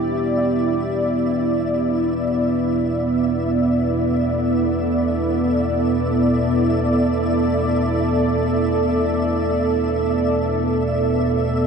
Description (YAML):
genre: dark ambient drone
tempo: free time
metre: none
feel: none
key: unclear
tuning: A4 = 440 Hz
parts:
  - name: dark analog pad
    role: sustained chords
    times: 0.0-11.7 s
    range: B3 to D5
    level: -18 LUFS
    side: right 1 dB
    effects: chorus
  - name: deep rumbling drone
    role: drone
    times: 0.0-11.7 s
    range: E2 to B2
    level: -26 LUFS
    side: left 1 dB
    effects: built-in reverb
  - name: flickering grainy texture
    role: texture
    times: 0.0-11.7 s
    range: E5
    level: -31 LUFS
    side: left 1 dB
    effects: built-in reverb
room: wet huge ambient reverb, RT60 7.8 s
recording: dark, warm production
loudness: -17 LUFS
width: side -6 dB against mid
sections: 0.0-11.7 A section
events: fade-in on synth drone 0.0-11.7; fade-in on synth texture 0.0-11.7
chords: 0.0 Gadd9/E